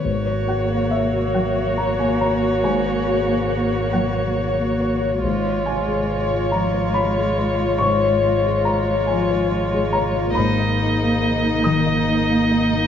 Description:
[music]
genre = neoclassical piano and strings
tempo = 47 BPM (dotted quarters)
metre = 6/8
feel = rubato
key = unclear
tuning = A4 = 443 Hz
[part]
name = muted violin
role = melody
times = 0.0-12.9 s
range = C#5 to D#5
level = -23 LUFS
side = left 2 dB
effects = none
[part]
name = muted cello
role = second line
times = 0.0-12.9 s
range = G#3 to A#3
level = -26 LUFS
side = right 5 dB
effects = none
[part]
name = felt-muted upright piano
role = accompaniment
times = 0.0-12.9 s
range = G#2 to D#6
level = -22 LUFS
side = left 3 dB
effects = none
[part]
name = muted viola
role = accompaniment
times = 0.0-12.9 s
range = D#4 to F#4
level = -28 LUFS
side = right 1 dB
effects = none
[part]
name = muted chamber string section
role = sustained chords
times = 0.0-12.9 s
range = G#3 to D#5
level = -32 LUFS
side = equal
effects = none
[part]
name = sub bass with octave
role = bass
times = 0.1-12.9 s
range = G#1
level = -26 LUFS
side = equal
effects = none
[sound]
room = moderate recital hall reverb, RT60 1.7 s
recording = small room ambience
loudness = -17 LUFS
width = side -8 dB against mid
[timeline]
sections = 0.0-12.9 A section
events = none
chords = 0.0 F#/G#; 5.2 C#/G#; 10.4 G#madd9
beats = | 0.05 1.35 | 2.65 3.94 | 5.24 6.52 | 7.80 9.08 | 10.36 11.64

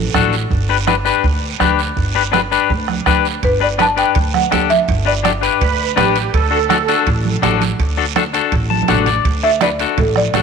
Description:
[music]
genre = latin, cumbia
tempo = 165 BPM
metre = 4/4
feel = straight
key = D major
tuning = A4 = 440 Hz
[part]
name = buzzing marimba with medium mallets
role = melody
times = 0.0-0.1, 3.4-5.6, 9.4-10.4 s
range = A4 to A5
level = -18 LUFS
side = right 1 dB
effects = none
[part]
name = upright bass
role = bass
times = 0.0-10.4 s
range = G1 to D2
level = -20 LUFS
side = equal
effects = none
[part]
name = clean electric guitar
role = accompaniment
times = 0.1-10.4 s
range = D4 to A5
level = -17 LUFS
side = left 11 dB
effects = none
[part]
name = bombo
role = percussion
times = 0.1-10.4 s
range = none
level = -21 LUFS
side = right 4 dB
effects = none
[part]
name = congas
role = percussion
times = 0.1-10.4 s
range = none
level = -23 LUFS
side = right 9 dB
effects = none
[part]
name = guiro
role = percussion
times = 0.1-10.4 s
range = none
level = -27 LUFS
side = right 14 dB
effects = none
[part]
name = timbales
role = percussion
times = 3.4-10.4 s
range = none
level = -28 LUFS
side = right 14 dB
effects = none
[part]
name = musette accordion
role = second line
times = 5.6-7.0 s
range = G4 to B4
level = -20 LUFS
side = right 11 dB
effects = none
[sound]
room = moderate plate reverb, RT60 3.5 s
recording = 1960s-style stereo with parts hard left and right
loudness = -13 LUFS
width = side -6 dB against mid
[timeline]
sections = 0.0-9.3 A section; 9.3-10.4 A section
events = clean electric guitar fill 8.5-9.3; drum fill 8.7-9.3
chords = 0.0 D; 0.5 G; 6.3 D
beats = 0.15 | 0.51 0.88 1.24 1.61 | 1.97 2.33 2.70 3.06 | 3.43 3.79 4.16 4.52 | 4.88 5.25 5.61 5.98 | 6.34 6.71 7.07 7.43 | 7.80 8.16 8.53 8.89 | 9.25 9.62 9.98 10.34

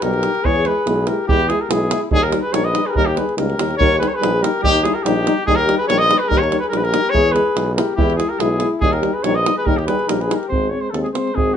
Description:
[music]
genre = balkan folk, Balkan brass band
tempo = 143 BPM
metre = 2/4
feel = straight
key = Eb phrygian dominant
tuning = A4 = 440 Hz
[part]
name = mellow trumpet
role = melody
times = 0.0-11.6 s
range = F#4 to Eb5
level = -19 LUFS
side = left 1 dB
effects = none
[part]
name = mellow flugelhorn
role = second line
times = 0.0-10.5 s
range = Eb4 to Cb5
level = -24 LUFS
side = left 5 dB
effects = none
[part]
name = mellow French horn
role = accompaniment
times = 0.0-11.6 s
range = B#3 to E4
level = -25 LUFS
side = left 8 dB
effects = none
[part]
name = warm euphonium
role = accompaniment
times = 0.0-11.5 s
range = G3 to G#3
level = -25 LUFS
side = right 7 dB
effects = none
[part]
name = clear tuba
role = bass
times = 0.0-11.6 s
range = G#1 to E2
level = -22 LUFS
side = right 1 dB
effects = none
[part]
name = davul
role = percussion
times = 0.0-11.5 s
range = none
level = -22 LUFS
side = right 3 dB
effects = none
[sound]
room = moderate studio reverb, RT60 0.6 s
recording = nothing above 10.6 kHz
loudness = -15 LUFS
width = side -8 dB against mid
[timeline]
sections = 0.0-3.8 A section; 3.8-10.5 A section; 10.5-11.6 B section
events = none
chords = 0.4 E; 2.1 Eb; 7.1 E; 8.8 Eb; 10.5 G#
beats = 0.03 | 0.45 0.87 | 1.28 1.70 | 2.12 2.54 | 2.96 3.38 | 3.80 4.21 | 4.63 5.05 | 5.47 5.89 | 6.31 6.73 | 7.14 7.56 | 7.98 8.40 | 8.82 9.24 | 9.66 10.08 | 10.50 10.93 | 11.35

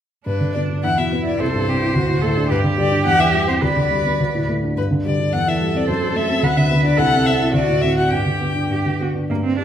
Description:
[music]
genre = quick classical-period movement for piano trio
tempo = 106 BPM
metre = 2/4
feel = rubato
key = G major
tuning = A4 = 440 Hz
[part]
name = rich violin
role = melody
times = 0.3-9.0 s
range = B4 to G5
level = -22 LUFS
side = left 4 dB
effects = none
[part]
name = warm cello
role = second line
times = 0.3-9.6 s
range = Bb3 to B4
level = -23 LUFS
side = right 4 dB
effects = none
[part]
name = dark baby grand piano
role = accompaniment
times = 0.3-9.6 s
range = C2 to G4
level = -19 LUFS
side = equal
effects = none
[sound]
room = wet recital hall reverb, RT60 1.5 s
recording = heard from further back in the room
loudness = -16 LUFS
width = side -10 dB against mid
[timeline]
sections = 0.3-9.3 A section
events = none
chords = 0.3 G; 0.8 E5; 1.4 C; 2.0 D7; 2.5 G5; 3.1 C/E; 3.6 G/D; 4.2 D5; 4.8 G5; 5.3 C/E; 5.9 F#dim; 6.4 Bm/D; 7.0 Am/C; 7.5 D7; 8.1 G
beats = | 0.27 0.84 | 1.40 1.96 | 2.50 3.05 | 3.62 4.19 | 4.77 5.33 | 5.88 6.43 | 6.98 7.53 | 8.11 8.71 | 9.30

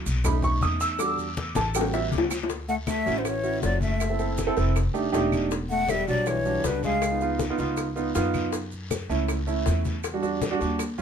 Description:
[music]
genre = Afro-Cuban jazz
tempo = 159 BPM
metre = 4/4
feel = straight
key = unclear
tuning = A4 = 437 Hz
[part]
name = warm concert grand piano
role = accompaniment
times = 0.0-11.0 s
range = G3 to E6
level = -27 LUFS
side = right 4 dB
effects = none
[part]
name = upright bass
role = bass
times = 0.1-11.0 s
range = E1 to F#2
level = -29 LUFS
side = equal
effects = none
[part]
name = congas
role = percussion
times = 0.1-11.0 s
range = none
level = -34 LUFS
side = left 3 dB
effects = none
[part]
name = guiro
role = percussion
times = 0.1-11.0 s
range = none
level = -40 LUFS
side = left 4 dB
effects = none
[part]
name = maracas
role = percussion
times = 0.1-11.0 s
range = none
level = -40 LUFS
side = right 6 dB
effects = none
[part]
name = claves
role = percussion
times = 0.2-11.0 s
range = none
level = -39 LUFS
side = right 9 dB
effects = none
[part]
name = cowbell and bongos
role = percussion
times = 0.2-11.0 s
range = none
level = -32 LUFS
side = left 7 dB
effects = none
[part]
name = breathy hollow jazz flute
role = melody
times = 2.7-7.4 s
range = B4 to F#5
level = -27 LUFS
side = right 1 dB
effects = none
[part]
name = mellow trombone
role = second line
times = 2.7-7.4 s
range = D3 to A3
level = -30 LUFS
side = left 8 dB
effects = none
[sound]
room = light reverb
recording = minimal, uncompressed stereo recording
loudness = -23 LUFS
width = side -7 dB against mid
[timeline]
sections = 0.0-2.5 A section; 2.5-11.0 B section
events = grand piano solo 0.0-2.5; drum fill 1.6-2.5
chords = 0.2 B7; 1.0 Em7; 1.8 A13; 2.5 Dmaj9; 4.0 F#m7b5; 4.8 F13; 5.5 Em9; 7.0 C#7; 8.5 F#m7; 10.0 Em9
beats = 0.25 0.62 | 1.00 1.38 1.75 2.13 | 2.50 2.88 3.25 3.63 | 4.01 4.38 4.76 5.14 | 5.51 5.89 6.27 6.64 | 7.02 7.40 7.78 8.15 | 8.53 8.91 9.28 9.66 | 10.04 10.42 10.79

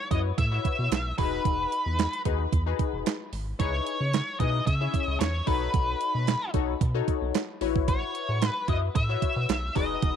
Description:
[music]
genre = early-eighties boogie funk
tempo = 112 BPM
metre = 4/4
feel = straight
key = unclear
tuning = A4 = 440 Hz
[part]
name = octave-fuzz lead guitar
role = melody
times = 0.0-10.2 s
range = B4 to E5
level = -30 LUFS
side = equal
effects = distortion, tape echo
[part]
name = funky polysynth comp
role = accompaniment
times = 0.1-10.2 s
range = C#4 to E5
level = -32 LUFS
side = left 15 dB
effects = chorus
[part]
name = rubbery square bass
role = bass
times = 0.1-10.2 s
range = E1 to C#3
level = -29 LUFS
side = equal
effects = none
[part]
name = crisp 8-bit digital drum machine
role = drums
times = 0.1-10.2 s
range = handclaps, hi-hat, kick drum, snare drum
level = -28 LUFS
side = right 4 dB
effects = none
[sound]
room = light reverb, digital ambience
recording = 1960s-style stereo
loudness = -24 LUFS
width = side -8 dB against mid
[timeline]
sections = 0.0-10.2 A section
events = none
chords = 0.0 A69; 1.2 Emaj7; 3.6 C#m7; 5.5 B7; 7.6 A69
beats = 0.38 0.92 | 1.45 1.99 2.52 3.06 | 3.60 4.13 4.67 5.20 | 5.74 6.27 6.81 7.35 | 7.88 8.42 8.95 9.49 | 10.02

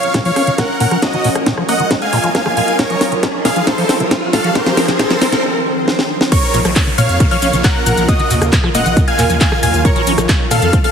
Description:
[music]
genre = uplifting trance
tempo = 136 BPM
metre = 4/4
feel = straight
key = Bb minor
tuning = A4 = 439 Hz
[part]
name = big supersaw lead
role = melody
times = 0.0-10.9 s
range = Gb4 to Ab5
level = -17 LUFS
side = right 1 dB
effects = sidechain pumping, digital delay
[part]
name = shimmering ambient pad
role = sustained chords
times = 0.0-10.9 s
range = C3 to Eb5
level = -22 LUFS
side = right 1 dB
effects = chorus, built-in reverb, sidechain pumping
[part]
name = house drum kit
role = drums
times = 0.0-10.9 s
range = crash cymbal, handclaps, hi-hat, rim click, shaker, snare drum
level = -18 LUFS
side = equal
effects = studio reverb
[part]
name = riser and downlifter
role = sound effects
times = 1.4-9.8 s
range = none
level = -24 LUFS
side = equal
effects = none
[part]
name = liquid acid bass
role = arpeggios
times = 0.1-10.9 s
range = A2 to Db4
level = -21 LUFS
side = left 1 dB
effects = phaser, sidechain pumping, digital delay
[part]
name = electronic kick drum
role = drums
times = 0.1-10.8 s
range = none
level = -15 LUFS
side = equal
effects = high-pass filter on kick, studio reverb
[part]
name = analog pluck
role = second line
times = 6.3-10.9 s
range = Db6 to Ab6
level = -23 LUFS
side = left 3 dB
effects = chorus, sidechain pumping, digital delay
[part]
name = gritty driven synth bass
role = bass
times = 6.5-10.7 s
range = Eb1 to Bb2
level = -17 LUFS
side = equal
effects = distortion, sidechain pumping
[sound]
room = moderate lush hall reverb, RT60 2.0 s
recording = heavily compressed radio sound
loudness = -12 LUFS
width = side -7 dB against mid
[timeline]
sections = 0.0-6.3 A section; 6.3-10.9 B section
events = build-up 0.0-6.3; drum fill 0.0-5.4, 5.9-6.3; filter sweep on acid bass 0.0-6.3; riser 1.4-5.4; break 5.4-6.3; drop 6.3-10.9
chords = 0.0 Bbm; 1.0 Ebmadd9; 2.8 Bbm; 3.7 F; 4.6 Ab; 5.4 Ebmadd9; 6.3 Bbm; 8.1 Ebmadd9; 9.8 Bbm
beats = 0.14 0.58 | 1.02 1.47 1.91 2.35 | 2.79 3.23 3.67 4.11 | 4.55 5.00 5.44 5.88 | 6.32 6.76 7.20 7.64 | 8.08 8.53 8.97 9.41 | 9.85 10.29 10.73

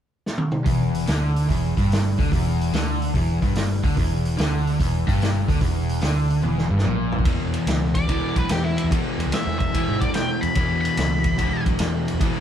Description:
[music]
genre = blues rock power trio and southern rock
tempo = 145 BPM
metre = 4/4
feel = swing 68% on 8ths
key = unclear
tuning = A4 = 440 Hz
[part]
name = vintage drum kit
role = drums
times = 0.3-12.3 s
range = hi-hat, kick drum, ride cymbal, snare drum, toms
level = -24 LUFS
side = equal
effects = none
[part]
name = overdriven semi-hollow guitar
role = riff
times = 0.7-12.4 s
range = E2 to E3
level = -23 LUFS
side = equal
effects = none
[part]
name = vintage muted fingered electric bass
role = bass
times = 0.7-12.3 s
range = E1 to G#2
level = -25 LUFS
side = equal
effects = none
[part]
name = octave-fuzz lead guitar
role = melody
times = 7.9-11.6 s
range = E4 to B5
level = -26 LUFS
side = left 2 dB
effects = distortion
[sound]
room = moderate studio reverb, RT60 0.8 s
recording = band playing live in one room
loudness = -19 LUFS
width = side -10 dB against mid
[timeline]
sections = 0.6-7.3 A section; 7.3-12.4 B section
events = drum fill 0.2-0.6, 6.4-7.3; lead electric guitar solo 7.3-12.4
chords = 0.0 N.C.; 0.6 Em7b5; 7.3 E5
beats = 0.23 | 0.65 1.06 1.47 1.89 | 2.30 2.71 3.13 3.54 | 3.95 4.37 4.78 5.19 | 5.60 6.02 6.43 6.84 | 7.25 7.67 8.08 8.49 | 8.91 9.32 9.73 10.14 | 10.56 10.97 11.38 11.79 | 12.21

